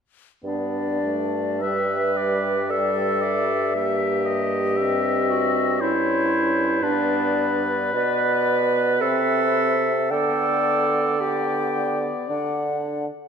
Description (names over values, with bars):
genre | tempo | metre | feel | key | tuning
classical, slow romantic movement for wind quintet | 49-60 BPM | 3/4 | rubato | G major | A4 = 440 Hz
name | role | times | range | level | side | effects
concert flute | melody | 0.4-13.1 s | Db5 to G5 | -28 LUFS | left 9 dB | none
clear French horn | accompaniment | 0.4-13.1 s | G3 to D4 | -31 LUFS | left 1 dB | none
clear clarinet | accompaniment | 0.4-12.3 s | D4 to B4 | -24 LUFS | right 5 dB | none
mellow bassoon | bass | 0.4-13.1 s | G2 to D3 | -26 LUFS | right 2 dB | none
warm oboe | second line | 1.6-12.8 s | B4 to E5 | -27 LUFS | left 5 dB | none
room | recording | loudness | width
moderate scoring stage reverb, RT60 1.6 s | none | -20 LUFS | side -7 dB against mid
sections
0.4-13.3 A section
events
none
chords
0.4 G; 3.8 Gdim7; 6.8 G; 9.0 C; 10.1 G/D; 12.3 D